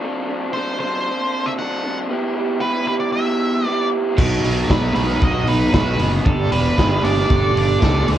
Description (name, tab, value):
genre	indie rock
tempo	115 BPM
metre	4/4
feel	straight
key	unclear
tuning	A4 = 438 Hz
part	raw garage guitar	riff	0.0-8.2 s	F#3 to A4	-21 LUFS	equal	overdrive
part	octave-fuzz lead guitar	melody	0.5-8.1 s	A4 to F#5	-24 LUFS	right 1 dB	distortion, plate reverb, tape echo
part	overdriven electric guitar	riff	4.2-8.2 s	B2 to A4	-25 LUFS	right 10 dB	lush chorus
part	fuzz fingered electric bass	bass	4.2-8.2 s	E1 to D2	-20 LUFS	right 1 dB	overdrive
part	raw garage drum kit	drums	4.2-8.2 s	crash cymbal, hi-hat, kick drum, snare drum	-19 LUFS	equal	none
room	light reverb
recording	worn, warbling old tape, cassette tape, warbly pitch drift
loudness	-16 LUFS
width	side -11 dB against mid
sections	0.0-8.2 A section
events	none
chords	0.0 D7; 2.1 Em; 4.2 B; 6.3 Gadd9